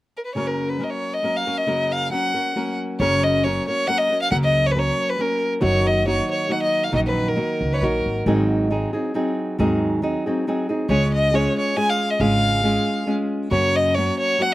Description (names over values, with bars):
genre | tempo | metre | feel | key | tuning
mexican folk, mariachi | 137 BPM | 3/4 | swing 53% on 8ths | F# major | A4 = 444 Hz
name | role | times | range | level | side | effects
rich violin | melody | 0.2-8.2, 10.9-14.5 s | A#4 to G#5 | -21 LUFS | equal | none
flamenco guitar | accompaniment | 0.3-14.5 s | F#2 to A#4 | -22 LUFS | equal | none
upright bass | bass | 3.0-14.1 s | F#1 to F#2 | -23 LUFS | equal | none
room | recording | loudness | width
little or no reverb | recorded outdoors, with no room sound | -18 LUFS | side -16 dB against mid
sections
0.4-3.0 A section; 3.0-14.5 B section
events
none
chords
0.4 F#; 5.6 D#m/F#; 8.3 G#7; 10.9 C#; 13.5 F#